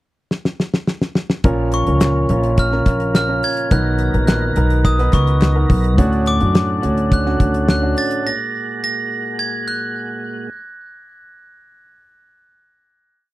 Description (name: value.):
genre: piano-driven pop.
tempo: 106 BPM.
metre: 4/4.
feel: straight.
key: F# major.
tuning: A4 = 440 Hz.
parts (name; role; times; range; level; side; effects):
damped 70s drum kit; drums; 0.3-8.2 s; hi-hat, kick drum, snare drum; -16 LUFS; equal; none.
clear concert grand piano; accompaniment; 1.4-8.3 s; A2 to B4; -20 LUFS; right 2 dB; none.
tonewheel organ; sustained chords; 1.4-10.5 s; A#2 to A#5; -28 LUFS; equal; chorus vibrato, slow rotary speaker.
upright bass; bass; 1.4-7.9 s; A#1 to F#2; -17 LUFS; equal; none.
glockenspiel with brass mallets; melody; 1.7-10.2 s; C#6 to A#6; -23 LUFS; equal; none.
group handclap; percussion; 2.0-5.5 s; none; -32 LUFS; left 6 dB; none.
room: little or no reverb.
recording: dry, close 1970s-style studio recording.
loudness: -15 LUFS.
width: side -17 dB against mid.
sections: 0.0-1.4 pickup bar; 1.4-10.5 chorus.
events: drum fill 0.3-1.4.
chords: 0.0 N.C.; 1.4 A#m; 3.7 Bmaj7; 6.0 Dmaj7; 8.3 F#add9.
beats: 0.32 0.88 | 1.45 2.01 2.58 3.15 | 3.71 4.28 4.85 5.42 | 5.98 6.55 7.12 7.68 | 8.25 8.82 9.39 9.95.